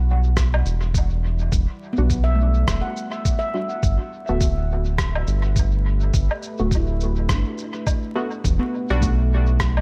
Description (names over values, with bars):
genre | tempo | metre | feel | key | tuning
ambient dub | 104 BPM | 4/4 | swing 59% on 16ths | E minor | A4 = 440 Hz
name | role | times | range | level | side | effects
deep dark ambient pad | sustained chords | 0.8-9.8 s | G3 to F#5 | -40 LUFS | equal | chorus, built-in reverb
round analog bass | bass | 0.0-9.8 s | D1 to B1 | -22 LUFS | equal | none
electronic kick drum | drums | 0.4-9.7 s | none | -24 LUFS | equal | studio reverb
electronic rim click, shaker and woodblock | drums | 0.4-9.8 s | none | -32 LUFS | equal | studio reverb, dub echo
handpan | arpeggios | 1.9-9.8 s | A3 to F#5 | -32 LUFS | equal | dub echo
filtered dub chord stab | stabs | 2.0-9.1 s | G3 to F#4 | -32 LUFS | equal | lush chorus, cassette tape, dub echo
room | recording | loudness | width
light reverb, digital ambience | vinyl crackle | -21 LUFS | mono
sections
0.0-9.8 A section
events
fade-in on ambient pad 0.0-9.8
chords
0.0 Em9; 3.8 Gmaj9; 8.4 Em9